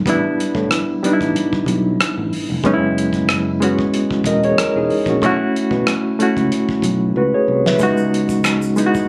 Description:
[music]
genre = R&B, neo-soul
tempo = 93 BPM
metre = 4/4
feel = swing 54% on 16ths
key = unclear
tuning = A4 = 437 Hz
[part]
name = reed electric piano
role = accompaniment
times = 0.0-9.1 s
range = G3 to E5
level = -18 LUFS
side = equal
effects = fast tremolo
[part]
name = sustaining fretless electric bass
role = bass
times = 0.0-8.9 s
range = E1 to B2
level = -25 LUFS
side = equal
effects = none
[part]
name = cloth-damped thuddy drum kit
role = drums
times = 0.1-9.1 s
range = hi-hat, kick drum, rim click, snare drum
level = -25 LUFS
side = equal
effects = none
[part]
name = egg shaker and finger snaps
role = percussion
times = 7.8-9.1 s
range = none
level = -29 LUFS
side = equal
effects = none
[sound]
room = light reverb, small room ambience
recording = recorded on a phone in the room, club reverb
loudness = -17 LUFS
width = mono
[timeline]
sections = 0.0-9.1 A section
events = drum fill 7.2-7.8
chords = 0.1 A9sus4; 2.6 F#9sus4; 5.2 B9sus4; 7.8 C#9sus4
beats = | 0.06 0.70 1.35 1.99 | 2.64 3.28 3.93 4.57 | 5.22 5.86 6.51 7.16 | 7.80 8.45

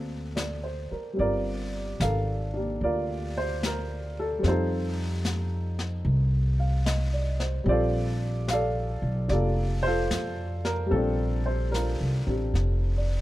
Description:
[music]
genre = jazz ballad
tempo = 74 BPM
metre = 4/4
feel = swing 67% on 8ths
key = Bb major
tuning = A4 = 440 Hz
[part]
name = dark baby grand piano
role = accompaniment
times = 0.0-13.2 s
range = G3 to F5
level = -29 LUFS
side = equal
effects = none
[part]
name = upright bass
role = bass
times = 0.0-13.2 s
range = F1 to F2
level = -27 LUFS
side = equal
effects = none
[part]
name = jazz brush drum kit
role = drums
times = 0.4-13.2 s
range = brushed snare drum, hi-hat, snare drum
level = -36 LUFS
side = left 2 dB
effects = none
[sound]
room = little or no reverb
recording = dark, warm production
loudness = -25 LUFS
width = side -16 dB against mid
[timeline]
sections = 0.0-13.2 A section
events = none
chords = 0.0 D7b13; 1.2 Gm9; 4.4 F9; 7.7 Bbmaj9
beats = 0.36 | 1.19 2.00 2.81 3.63 | 4.44 5.25 6.06 6.86 | 7.67 8.48 9.29 10.11 | 10.92 11.73 12.55

